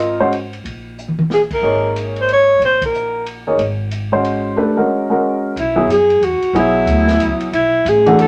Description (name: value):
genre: modal jazz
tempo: 183 BPM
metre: 3/4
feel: swing 62% on 8ths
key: Eb dorian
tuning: A4 = 440 Hz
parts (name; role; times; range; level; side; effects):
- warm upright piano; accompaniment; 0.0-8.3 s; E3 to Eb5; -18 LUFS; equal; none
- upright bass; bass; 0.0-8.3 s; Ab1 to F#2; -26 LUFS; equal; none
- vintage drum kit; drums; 0.0-8.3 s; crash cymbal, hi-hat, kick drum, ride cymbal, snare drum, toms; -30 LUFS; equal; none
- breathy alto saxophone; melody; 1.3-3.3, 5.6-8.3 s; E4 to Db5; -16 LUFS; equal; none
room: moderate studio reverb, RT60 0.6 s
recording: none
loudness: -16 LUFS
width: mono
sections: 0.0-5.6 A section; 5.6-8.3 B section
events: drum fill 1.0-1.3; band accent 2.8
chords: 0.0 Eb7sus4; 4.6 Gb; 5.6 B7sus4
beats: 0.31 | 0.64 0.97 1.30 | 1.63 1.95 2.28 | 2.61 2.94 3.27 | 3.60 3.92 4.25 | 4.58 4.91 5.24 | 5.56 5.89 6.22 | 6.55 6.88 7.20 | 7.53 7.86 8.19